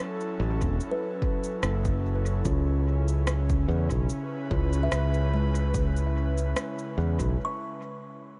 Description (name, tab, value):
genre	ambient dub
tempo	73 BPM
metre	4/4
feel	swing 54% on 16ths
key	unclear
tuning	A4 = 440 Hz
part	airy breathy pad	sustained chords	0.0-7.4 s	C#3 to B4	-36 LUFS	equal	chorus
part	kalimba	arpeggios	0.0-8.4 s	G#3 to C#6	-39 LUFS	equal	tape echo
part	electronic cabasa and rim click	drums	0.2-7.3 s	none	-37 LUFS	equal	overdrive, dub echo
part	fingered electric bass	bass	0.4-7.4 s	E1 to E2	-28 LUFS	equal	none
part	electronic kick drum	drums	0.6-7.3 s	none	-32 LUFS	equal	none
room	light reverb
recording	nothing above 10.4 kHz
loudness	-27 LUFS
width	mono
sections	0.0-8.4 A section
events	break 7.4-8.4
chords	0.0 F#m7; 2.5 C#m7